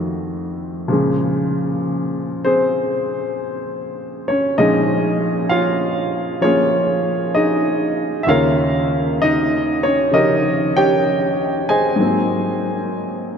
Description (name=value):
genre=solo jazz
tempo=65 BPM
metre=4/4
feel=swing 67% on 8ths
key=unclear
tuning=A4 = 440 Hz
part: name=warm baby grand piano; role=solo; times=0.0-13.4 s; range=Eb2 to Ab5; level=-16 LUFS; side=equal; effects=none
room=wet cathedral reverb, RT60 6.3 s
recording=in a vast, echoing space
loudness=-16 LUFS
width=side -7 dB against mid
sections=0.0-13.4 A section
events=none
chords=0.0 F7b9; 0.9 Bbm7; 8.3 Eb9; 12.0 Ab9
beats=| 0.89 1.81 2.73 3.65 | 4.57 5.49 6.42 7.34 | 8.27 9.19 10.12 11.04 | 11.97 12.90